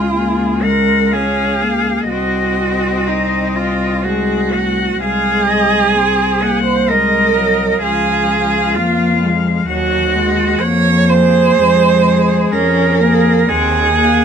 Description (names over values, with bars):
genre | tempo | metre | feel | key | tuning
classical, lyrical piece for cello ensemble | 63 BPM | 3/4 | rubato | Db major | A4 = 439 Hz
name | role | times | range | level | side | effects
rich cello | melody | 0.0-14.2 s | Ab4 to Gb5 | -20 LUFS | left 8 dB | none
rich cello | second line | 0.0-14.2 s | Eb4 to Db5 | -15 LUFS | right 6 dB | none
rich cello | accompaniment | 0.0-14.2 s | F3 to Db4 | -19 LUFS | left 4 dB | none
dark cello | bass | 0.0-14.2 s | C2 to F2 | -18 LUFS | left 1 dB | none
room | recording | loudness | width
moderate small room reverb, RT60 0.6 s | minimal, uncompressed stereo recording | -12 LUFS | side -7 dB against mid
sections
0.0-14.2 A section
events
none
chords
0.0 Db; 2.1 Cdim; 5.0 Ab7/C; 7.8 Db; 9.7 Ab5/Eb; 10.6 Fmadd11; 13.5 Ab7/Eb